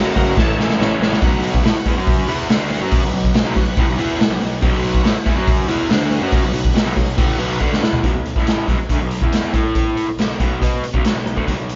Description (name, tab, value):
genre	classic rock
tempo	141 BPM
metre	4/4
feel	straight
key	unclear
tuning	A4 = 441 Hz
part	bright tonewheel organ	sustained chords	0.0-8.0 s	C#3 to G5	-29 LUFS	equal	overdrive, chorus vibrato, slow rotary speaker
part	raw garage guitar	riff	0.0-11.8 s	A2 to B4	-24 LUFS	equal	overdrive
part	fuzz picked electric bass	bass	0.0-11.8 s	F#1 to B2	-27 LUFS	equal	overdrive
part	raw garage drum kit	drums	0.2-11.8 s	hi-hat, kick drum, snare drum, toms	-20 LUFS	equal	none
room	light reverb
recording	band playing live in one room, nothing above 7.5 kHz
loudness	-17 LUFS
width	mono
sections	0.0-1.2 A section; 1.2-8.0 B section; 8.0-11.8 C section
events	drum fill 0.4-1.2, 7.6-8.0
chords	0.4 A; 1.2 B5; 9.5 A5; 10.1 B5